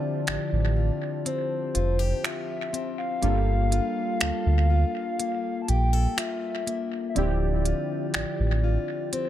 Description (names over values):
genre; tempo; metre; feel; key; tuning
contemporary R&B; 61 BPM; 4/4; straight; D minor; A4 = 440 Hz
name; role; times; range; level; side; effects
hollow clarinet-like synth lead; melody; 0.0-9.3 s; C5 to A5; -31 LUFS; equal; chorus, analog delay
warm analog keys; accompaniment; 0.0-9.3 s; F3 to A5; -32 LUFS; right 1 dB; chorus, analog delay
fingerpicked plugged-in steel-string acoustic guitar; arpeggios; 0.0-9.3 s; D3 to A4; -32 LUFS; left 7 dB; analog delay
sub bass with octave; bass; 0.3-8.8 s; D1 to D2; -23 LUFS; equal; none
smooth R&B drum kit; drums; 0.3-9.3 s; finger snaps, hi-hat; -32 LUFS; right 1 dB; analog delay
room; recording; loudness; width
little or no reverb; echo-heavy mix; -24 LUFS; side -12 dB against mid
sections
0.0-9.3 A section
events
break 0.0-9.3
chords
0.0 Dm11; 3.2 Gm9; 7.2 Dm11